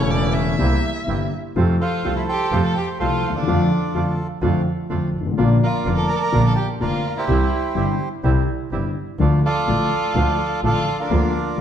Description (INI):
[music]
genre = tango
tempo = 126 BPM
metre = 4/4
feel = rubato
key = F major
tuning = A4 = 440 Hz
[part]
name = rich violin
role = second line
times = 0.0-11.6 s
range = D4 to E5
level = -28 LUFS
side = left 3 dB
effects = none
[part]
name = dark concert grand piano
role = accompaniment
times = 0.0-11.6 s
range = E1 to F4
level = -21 LUFS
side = left 2 dB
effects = none
[part]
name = bandoneon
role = stabs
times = 0.0-11.6 s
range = G3 to F4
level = -30 LUFS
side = right 4 dB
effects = none
[part]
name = clear double bass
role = bass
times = 0.0-11.6 s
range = E1 to F2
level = -23 LUFS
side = right 2 dB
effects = none
[part]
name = bandoneon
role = melody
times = 1.8-11.6 s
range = F4 to Bb5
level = -24 LUFS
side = right 3 dB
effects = none
[sound]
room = wet recital hall reverb, RT60 1.5 s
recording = dark, warm production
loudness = -18 LUFS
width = side -9 dB against mid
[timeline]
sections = 0.0-1.6 A section; 1.6-11.6 B section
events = violin solo 0.0-1.6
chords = 0.0 A; 0.6 C7; 1.6 F; 3.5 Dm/F; 5.4 Bb; 7.3 C; 9.2 Dm